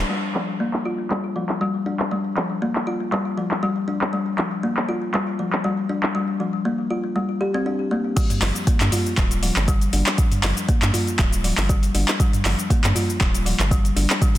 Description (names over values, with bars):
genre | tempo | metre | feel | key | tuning
afro house | 119 BPM | 4/4 | swing 53% on 16ths | G minor | A4 = 440 Hz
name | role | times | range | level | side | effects
round analog bass | bass | 0.0, 8.4-14.1 s | D1 to G2 | -23 LUFS | equal | sidechain pumping
kalimba | arpeggios | 0.1-14.3 s | F3 to G4 | -24 LUFS | left 2 dB | vintage 12-bit sampler grit, sidechain pumping, low-pass filter, ping-pong delay
afro-pop drum kit | drums | 0.1-14.4 s | crash cymbal, handclaps, hi-hat, shaker, toms | -24 LUFS | equal | low-pass filter on hats, low-pass filter on perc, low-pass filter on toms, low-pass filter on snare, low-pass filter on cymbals
electronic kick drum | drums | 8.2-14.3 s | none | -19 LUFS | equal | none
room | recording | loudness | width
digital ambience | dense, heavily limited modern master | -19 LUFS | side -14 dB against mid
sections
0.1-8.2 A section; 8.2-14.4 B section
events
band accent 0.0; drop 8.2-14.4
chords
0.1 Gm; 8.2 G5